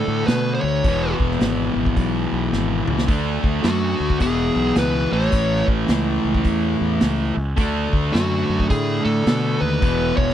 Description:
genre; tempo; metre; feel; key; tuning
blues rock power trio and southern rock; 107 BPM; 4/4; swing 63% on 8ths; E mixolydian; A4 = 440 Hz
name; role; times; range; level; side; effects
fuzz lead guitar; melody; 0.0-10.3 s; F#4 to C#5; -24 LUFS; equal; distortion
fuzz guitar; riff; 0.0-10.3 s; E2 to D4; -21 LUFS; equal; distortion
fuzz fingered electric bass; bass; 0.1-10.3 s; E1 to B2; -23 LUFS; equal; overdrive
vintage drum kit; drums; 0.3-10.3 s; hi-hat, kick drum, snare drum, toms; -21 LUFS; equal; none
room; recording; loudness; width
light reverb; dry, close 1970s-style studio recording; -17 LUFS; side -10 dB against mid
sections
0.0-10.3 A section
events
drum fill 2.5-3.1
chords
0.0 D5; 0.8 E; 3.1 D; 4.2 E; 5.1 A; 7.6 D; 9.8 E5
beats
0.28 | 0.84 1.41 1.97 2.53 | 3.09 3.65 4.21 4.77 | 5.33 5.89 6.45 7.02 | 7.58 8.14 8.70 9.26 | 9.82

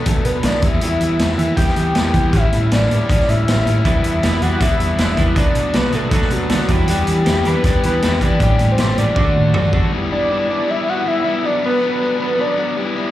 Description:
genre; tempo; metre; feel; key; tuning
indie rock; 158 BPM; 4/4; straight; E minor; A4 = 440 Hz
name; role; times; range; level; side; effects
fat analog lead; melody; 0.0-12.8 s; F#4 to G5; -20 LUFS; equal; slapback echo
overdriven electric guitar; riff; 0.0-13.1 s; E3 to G4; -22 LUFS; left 6 dB; spring reverb, slapback echo
growling picked electric bass; bass; 0.1-9.9 s; E1 to E3; -20 LUFS; equal; overdrive
raw garage drum kit; drums; 0.1-9.8 s; hi-hat, kick drum, snare drum, toms; -18 LUFS; equal; none
twelve-string electric guitar; riff; 3.9-9.9 s; A2 to B4; -22 LUFS; right 5 dB; analog chorus, tape echo
bright tonewheel organ; sustained chords; 9.9-13.1 s; G4 to B5; -29 LUFS; right 1 dB; slow rotary speaker, overdrive
room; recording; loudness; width
light reverb, small room ambience; live gig heard through the venue's PA, club reverb; -14 LUFS; side -14 dB against mid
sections
0.0-9.9 A section; 9.9-13.1 B section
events
drum fill 9.2-9.9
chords
0.0 Bm7; 0.6 Em; 2.3 A7sus4; 3.9 Em7; 5.4 Bm7; 6.7 Em7; 8.4 A7sus4; 9.2 D; 9.9 Em7; 11.4 Bm7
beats
0.07 0.45 | 0.83 1.21 1.58 1.96 | 2.34 2.72 3.10 3.47 | 3.85 4.23 4.61 4.99 | 5.37 5.75 6.13 6.51 | 6.89 7.27 7.64 8.03 | 8.40 8.78 9.16 9.54 | 9.92 10.30 10.68 11.06 | 11.44 11.81 12.19 12.57 | 12.95

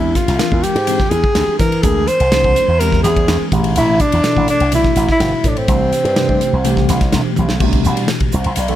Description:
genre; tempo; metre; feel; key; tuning
electric jazz fusion; 125 BPM; 4/4; straight; unclear; A4 = 440 Hz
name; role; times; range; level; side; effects
breathy alto saxophone; melody; 0.0-7.1 s; C4 to B#4; -16 LUFS; equal; none
mellow tine electric piano; accompaniment; 0.0-8.8 s; B2 to D5; -21 LUFS; left 1 dB; medium stereo tremolo, phaser
slap bass with an envelope filter; bass; 0.0-8.8 s; G1 to E3; -17 LUFS; equal; none
modern studio drum kit; drums; 0.2-8.8 s; crash cymbal, hi-hat, kick drum, ride cymbal, snare drum, toms; -18 LUFS; equal; none
room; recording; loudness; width
light reverb; none; -12 LUFS; side -12 dB against mid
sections
0.0-7.6 A section; 7.6-8.8 B section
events
drum fill 7.4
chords
0.0 E7alt; 3.5 A7sus2; 5.7 Cmaj9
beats
0.39 0.87 1.35 | 1.84 2.32 2.80 3.28 | 3.76 4.24 4.72 5.20 | 5.68 6.16 6.64 7.12 | 7.61 8.09 8.57

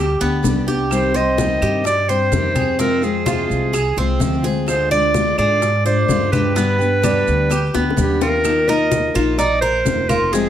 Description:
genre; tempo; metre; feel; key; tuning
latin, Cuban son and guajira; 128 BPM; 4/4; straight; unclear; A4 = 440 Hz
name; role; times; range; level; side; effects
bright clarinet; melody; 0.0-10.5 s; G4 to Eb5; -19 LUFS; right 1 dB; none
Cuban tres; arpeggios; 0.0-10.5 s; Ab3 to D5; -24 LUFS; right 4 dB; none
upright bass; bass; 0.0-10.5 s; F1 to Ab2; -22 LUFS; right 1 dB; none
picked steel-string acoustic guitar; accompaniment; 0.2-10.5 s; C3 to Bb4; -22 LUFS; left 3 dB; none
bongos; percussion; 0.2-10.5 s; none; -28 LUFS; left 7 dB; none
congas; percussion; 0.2-10.5 s; none; -26 LUFS; left 2 dB; none
maracas; percussion; 0.2-10.5 s; none; -33 LUFS; right 7 dB; none
claves; percussion; 0.9-10.3 s; none; -34 LUFS; right 5 dB; none
room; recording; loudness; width
moderate large studio reverb, RT60 0.8 s; none; -15 LUFS; side -10 dB against mid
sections
0.0-8.4 A section; 8.4-10.5 B section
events
drum fill 7.7-8.4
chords
0.0 G; 0.9 Cm; 2.8 Fm; 4.7 Ddim; 6.6 G; 8.4 Ebsus2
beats
0.44 | 0.91 1.38 1.85 2.32 | 2.79 3.26 3.73 4.20 | 4.67 5.14 5.62 6.09 | 6.56 7.03 7.50 7.97 | 8.44 8.91 9.38 9.86 | 10.33

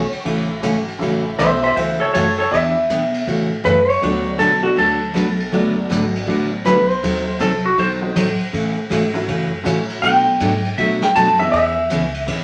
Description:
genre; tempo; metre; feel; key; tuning
country, western swing; 160 BPM; 4/4; swing 64% on 8ths; A major; A4 = 440 Hz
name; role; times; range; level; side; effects
clean lap steel guitar; second line; 0.0-12.2 s; F#4 to A5; -19 LUFS; equal; none
upright bass; bass; 0.0-12.4 s; F#1 to B2; -31 LUFS; equal; none
vintage brush drum kit; drums; 0.1-12.4 s; hi-hat, kick drum, ride cymbal, snare drum; -30 LUFS; equal; none
honky-tonk upright piano; accompaniment; 0.2-12.4 s; E3 to F#4; -29 LUFS; equal; none
picked steel-string acoustic guitar; accompaniment; 0.3-12.4 s; B2 to B4; -22 LUFS; equal; none
room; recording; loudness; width
wet club ambience, RT60 0.5 s; vinyl crackle; -18 LUFS; mono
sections
0.0-12.4 A section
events
electric slide guitar solo 0.0-12.4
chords
0.0 A6; 2.5 Em7; 3.3 A6; 4.0 D6; 7.0 D#dim7; 8.5 A6; 10.0 Bm7; 11.5 E6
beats
0.25 0.63 | 1.01 1.38 1.76 2.14 | 2.51 2.89 3.27 3.64 | 4.02 4.39 4.77 5.15 | 5.52 5.90 6.27 6.65 | 7.03 7.40 7.78 8.15 | 8.53 8.90 9.28 9.65 | 10.03 10.40 10.78 11.15 | 11.53 11.90 12.28

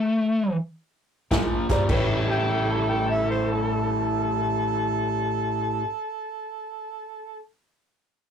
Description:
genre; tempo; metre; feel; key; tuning
electric blues shuffle; free time; none; none; A mixolydian; A4 = 438 Hz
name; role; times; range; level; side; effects
biting lead guitar; melody; 0.0-5.8 s; A3 to A4; -27 LUFS; left 1 dB; overdrive
clear upright piano; accompaniment; 1.3-5.8 s; G4 to Bb5; -32 LUFS; right 2 dB; none
crunchy overdriven guitar; riff; 1.3-5.9 s; A2 to E4; -26 LUFS; left 1 dB; none
upright bass; bass; 1.3-5.8 s; A1 to G2; -31 LUFS; equal; none
vintage drum kit; drums; 1.3-2.1 s; crash cymbal, hi-hat, kick drum, snare drum; -26 LUFS; equal; none
mellow harmonica; second line; 2.3-7.4 s; A4 to A5; -27 LUFS; right 3 dB; overdrive
room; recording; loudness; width
moderate booth ambience, RT60 0.2 s; rough rehearsal-room recording, tube saturation; -22 LUFS; side -7 dB against mid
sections
0.0-1.9 A section; 1.9-6.7 B section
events
slowing down 0.0-1.9; stop 0.0-1.3; upright piano fill 1.0-1.9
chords
0.0 A5; 1.3 Bb9; 1.9 A7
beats
free time

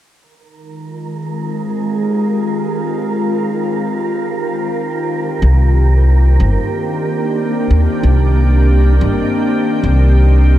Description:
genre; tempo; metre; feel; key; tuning
ambient; 92 BPM; 4/4; straight; unclear; A4 = 440 Hz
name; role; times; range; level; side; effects
soft additive organ-like pad; sustained chords; 0.7-10.6 s; Eb3 to G4; -17 LUFS; equal; ensemble chorus, built-in reverb
wind-like tuned noise texture; texture; 0.7-10.6 s; Bb4; -26 LUFS; right 9 dB; built-in reverb
upright bass; bass; 5.4-10.6 s; G1 to Eb2; -10 LUFS; equal; none
room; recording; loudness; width
light reverb, small room ambience; none; -12 LUFS; side -13 dB against mid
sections
0.2-10.6 A section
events
filter sweep on ambient pad 0.2-10.6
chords
0.2 Fm9; 5.4 Cm9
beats
| 0.21 0.86 1.51 2.16 | 2.81 3.47 4.12 4.77 | 5.42 6.08 6.73 7.38 | 8.03 8.68 9.34 9.99

